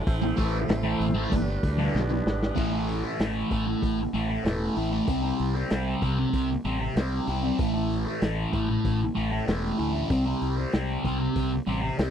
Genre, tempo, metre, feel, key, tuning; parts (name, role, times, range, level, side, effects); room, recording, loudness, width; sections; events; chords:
psychedelic rock; 96 BPM; 4/4; straight; A minor; A4 = 438 Hz
tonewheel organ; sustained chords; 0.0-2.6 s; G3 to C5; -32 LUFS; right 3 dB; slow rotary speaker, overdrive
tanpura; drone; 0.0-9.5 s; A2 to A3; -40 LUFS; equal; stereo widening
fuzz fingered electric bass; bass; 0.1-12.1 s; E1 to D2; -30 LUFS; equal; overdrive
vintage drum kit; drums; 0.1-12.1 s; crash cymbal, hi-hat, kick drum, snare drum; -28 LUFS; equal
thick fuzz guitar; riff; 0.2-12.1 s; G2 to C4; -27 LUFS; equal; distortion, phaser
light reverb; dry, close 1970s-style studio recording; -24 LUFS; side -8 dB against mid
0.0-2.6 A section; 2.6-12.1 B section
drum fill 1.9-2.6
0.1 Am; 1.3 G; 2.6 A5; 5.1 C5; 7.6 A5; 10.1 C5